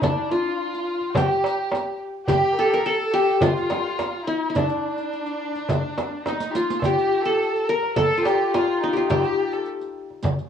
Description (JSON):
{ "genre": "Arabic maqam ensemble", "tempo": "106 BPM", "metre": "4/4", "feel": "straight", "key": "D maqam bayati", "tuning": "A4 = 440 Hz", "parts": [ { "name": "qanun", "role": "melody", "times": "0.0-10.4 s", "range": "D4 to Bb4", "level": "-22 LUFS", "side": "left 1 dB", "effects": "cassette tape" }, { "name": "dark chamber violin section", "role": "second line", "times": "0.0-9.6 s", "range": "D4 to Bb4", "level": "-31 LUFS", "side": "equal", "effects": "cassette tape" }, { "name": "rich violin", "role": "second line", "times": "0.0-9.7 s", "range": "D4 to Bb4", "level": "-31 LUFS", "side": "left 2 dB", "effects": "cassette tape" }, { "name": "darbuka", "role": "percussion", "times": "0.0-10.4 s", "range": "none", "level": "-27 LUFS", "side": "right 3 dB", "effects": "none" }, { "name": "frame drum", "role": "percussion", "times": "0.0-10.4 s", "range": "none", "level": "-27 LUFS", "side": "left 3 dB", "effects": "none" }, { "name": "riq", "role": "percussion", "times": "0.0-10.5 s", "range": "none", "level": "-36 LUFS", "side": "right 7 dB", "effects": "none" } ], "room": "light reverb, small room ambience", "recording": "home recording on cassette", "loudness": "-20 LUFS", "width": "side -8 dB against mid", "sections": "0.0-6.8 A section; 6.8-10.5 B section", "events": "drum fill 6.3-6.8", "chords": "none" }